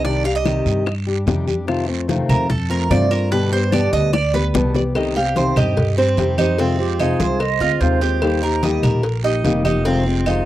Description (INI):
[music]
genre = latin, Cuban son and guajira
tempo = 147 BPM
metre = 4/4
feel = straight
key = C minor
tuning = A4 = 440 Hz
[part]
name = fingerpicked acoustic archtop guitar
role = accompaniment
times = 0.0-10.5 s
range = B2 to G4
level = -20 LUFS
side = left 3 dB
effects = none
[part]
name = Cuban tres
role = arpeggios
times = 0.0-10.5 s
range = C4 to F5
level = -23 LUFS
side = right 5 dB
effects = none
[part]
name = upright bass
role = bass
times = 0.0-10.4 s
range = F1 to G2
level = -21 LUFS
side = equal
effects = none
[part]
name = bongos and cowbell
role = percussion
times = 0.0-10.5 s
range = none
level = -26 LUFS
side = left 5 dB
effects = none
[part]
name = congas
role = percussion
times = 0.0-10.5 s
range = none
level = -24 LUFS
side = equal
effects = none
[part]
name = guiro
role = percussion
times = 0.1-10.5 s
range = none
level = -34 LUFS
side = right 12 dB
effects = none
[part]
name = claves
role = percussion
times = 0.5-10.5 s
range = none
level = -36 LUFS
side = left 2 dB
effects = none
[part]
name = nylon-string guitar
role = melody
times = 4.4-7.6 s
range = B4 to F5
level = -22 LUFS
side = right 3 dB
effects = none
[part]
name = mellow silver concert flute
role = second line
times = 6.8-8.6 s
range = G4 to Eb5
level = -23 LUFS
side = right 12 dB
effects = none
[sound]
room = light reverb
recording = dry, close 1970s-style studio recording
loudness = -16 LUFS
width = side -14 dB against mid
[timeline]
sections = 0.0-5.0 A section; 5.0-10.5 B section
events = Cuban tres solo 0.0-5.0; drum fill 4.1-5.0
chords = 0.0 Cmadd9; 1.7 F7; 3.3 G; 5.0 Cm; 6.6 Fm7; 8.2 Eb; 9.9 Fm7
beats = | 0.05 0.46 0.87 1.27 | 1.68 2.09 2.50 2.91 | 3.32 3.73 4.13 4.54 | 4.95 5.36 5.77 6.18 | 6.59 6.99 7.40 7.81 | 8.22 8.63 9.04 9.45 | 9.86 10.26